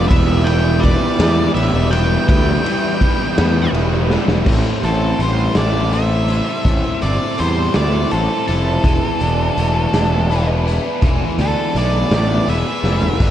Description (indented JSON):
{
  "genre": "indie rock",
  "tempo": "55 BPM (dotted quarters)",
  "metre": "6/8",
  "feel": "straight",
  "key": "A minor",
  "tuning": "A4 = 440 Hz",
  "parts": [
    { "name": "octave-fuzz lead guitar", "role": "melody", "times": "0.0-13.3 s", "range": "A4 to G5", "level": "-23 LUFS", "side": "equal", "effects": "distortion, diffuse ambient delay" },
    { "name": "tonewheel organ", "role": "sustained chords", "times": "0.0-4.4, 13.2-13.3 s", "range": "E4 to B5", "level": "-31 LUFS", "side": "right 2 dB", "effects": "none" },
    { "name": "biting overdriven guitar", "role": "riff", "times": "0.0-13.3 s", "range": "G2 to C5", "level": "-22 LUFS", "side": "right 7 dB", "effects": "lush chorus, diffuse ambient delay" },
    { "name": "overdriven semi-hollow guitar", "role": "riff", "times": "0.0-13.3 s", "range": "E3 to D5", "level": "-23 LUFS", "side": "left 9 dB", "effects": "lush chorus" },
    { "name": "fuzz picked electric bass", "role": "bass", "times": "0.0-13.3 s", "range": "E1 to E2", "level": "-18 LUFS", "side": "equal", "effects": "overdrive" },
    { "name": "raw garage drum kit", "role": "drums", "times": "0.1-13.3 s", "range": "crash cymbal, hi-hat, kick drum, ride cymbal, snare drum, toms", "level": "-20 LUFS", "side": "equal", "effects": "vintage 12-bit sampler grit" }
  ],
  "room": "light reverb, small room ambience",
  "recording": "none",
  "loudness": "-14 LUFS",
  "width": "side -11 dB against mid",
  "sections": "0.0-4.5 A section; 4.5-13.3 B section",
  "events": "drum fill 4.1-4.5, 12.8-13.2; lead electric guitar solo 4.5-13.3",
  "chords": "0.1 Em7; 4.5 Am7; 8.8 E7sus4"
}